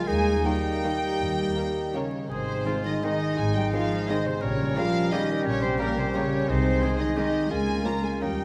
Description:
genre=classical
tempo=149-188 BPM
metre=3/4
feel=rubato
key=Ab major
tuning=A4 = 438 Hz
part: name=warm symphonic violin section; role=melody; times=0.0-8.4 s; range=Bb4 to Bb5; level=-37 LUFS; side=equal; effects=none
part: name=clear oboe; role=second line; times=0.0-8.4 s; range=Eb4 to C5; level=-38 LUFS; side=equal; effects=none
part: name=silver concert flute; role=second line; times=0.0-8.4 s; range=Bb4 to Bb5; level=-37 LUFS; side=equal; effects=none
part: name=warm clarinet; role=second line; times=0.0-8.4 s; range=Db4 to Eb4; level=-37 LUFS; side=equal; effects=none
part: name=mellow bassoon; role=accompaniment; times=0.0-8.4 s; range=G3 to Bb3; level=-36 LUFS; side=equal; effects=none
part: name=mellow French horn section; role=sustained chords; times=0.0-8.4 s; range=Bb3 to Bb4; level=-33 LUFS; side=equal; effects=none
part: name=concert harp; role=arpeggios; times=0.0-8.4 s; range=Ab2 to C6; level=-36 LUFS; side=equal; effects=none
part: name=warm symphonic cello section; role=bass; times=0.0-8.4 s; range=Bb2 to Bb3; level=-34 LUFS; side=equal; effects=none
part: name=dark symphonic double bass section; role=bass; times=0.1-8.4 s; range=Ab1 to Eb2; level=-34 LUFS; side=equal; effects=none
part: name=warm symphonic violin section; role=second line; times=0.5-8.3 s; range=G3 to Eb4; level=-42 LUFS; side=equal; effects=none
part: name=warm studio viola section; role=accompaniment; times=0.5-8.3 s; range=Db3 to Bb3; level=-40 LUFS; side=equal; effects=none
room=moderate scoring stage reverb, RT60 2.1 s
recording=vinyl crackle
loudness=-26 LUFS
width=mono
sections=0.0-8.4 A section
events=none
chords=0.1 Eb; 2.3 Ab; 4.4 Gdim/Bb; 6.5 Ab/C; 7.5 Bbm7/Db

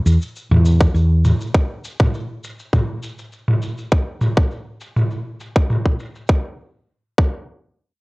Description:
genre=organic downtempo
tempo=101 BPM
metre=4/4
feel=straight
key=unclear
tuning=A4 = 440 Hz
part: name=woody fretless electric bass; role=bass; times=0.1-1.3 s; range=E2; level=-13 LUFS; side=equal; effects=sidechain pumping
part: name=electronic cabasa and toms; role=drums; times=0.1-6.3 s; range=none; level=-21 LUFS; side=equal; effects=overdrive, low-pass filter on perc, low-pass filter on toms, low-pass filter on snare, low-pass filter on room
part: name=electronic kick drum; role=drums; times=0.8-7.4 s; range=none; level=-16 LUFS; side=equal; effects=overdrive
room=little or no reverb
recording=worn, warbling old tape, cassette tape, warbly pitch drift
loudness=-17 LUFS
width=side -26 dB against mid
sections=0.0-6.3 A section; 6.3-8.0 B section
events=filter sweep on drum 0.0-6.3; filter sweep on fretless electric bass 0.0-1.5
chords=none

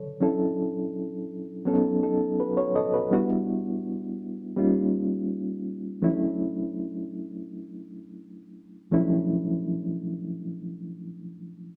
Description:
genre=soul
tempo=83 BPM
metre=4/4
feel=straight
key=unclear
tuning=A4 = 437 Hz
part: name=reed electric piano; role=solo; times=0.0-11.8 s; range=C#3 to D#5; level=-28 LUFS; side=equal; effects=fast tremolo
room=moderate studio reverb, RT60 0.6 s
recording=band playing live in one room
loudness=-28 LUFS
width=mono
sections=0.2-11.8 A section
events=none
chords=0.2 Dmaj7; 1.7 B7; 3.1 Em7; 4.6 Eb9; 6.0 Dmaj7

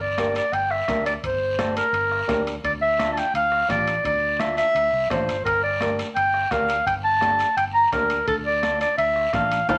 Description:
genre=latin, cumbia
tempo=170 BPM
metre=4/4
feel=straight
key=unclear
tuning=A4 = 440 Hz
part: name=breathy clarinet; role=melody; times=0.0-9.8 s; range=A4 to Bb5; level=-23 LUFS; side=equal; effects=none
part: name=fingered electric bass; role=bass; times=0.0-9.8 s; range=G1 to D2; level=-36 LUFS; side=equal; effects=none
part: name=flamenco guitar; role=accompaniment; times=0.2-9.8 s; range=D4 to Bb4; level=-32 LUFS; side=equal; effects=none
part: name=bombo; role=percussion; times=0.2-9.8 s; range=none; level=-38 LUFS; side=equal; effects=none
part: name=congas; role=percussion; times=0.2-9.8 s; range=none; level=-37 LUFS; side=equal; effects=none
part: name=guiro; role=percussion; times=0.2-9.8 s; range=none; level=-41 LUFS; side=equal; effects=none
part: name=timbales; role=percussion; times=0.2-9.8 s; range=none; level=-36 LUFS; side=equal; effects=none
room=moderate studio reverb, RT60 0.9 s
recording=none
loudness=-22 LUFS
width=mono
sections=0.0-9.8 A section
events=none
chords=0.0 Gm; 2.6 Dmadd9; 5.5 Gm; 8.3 Dmadd9

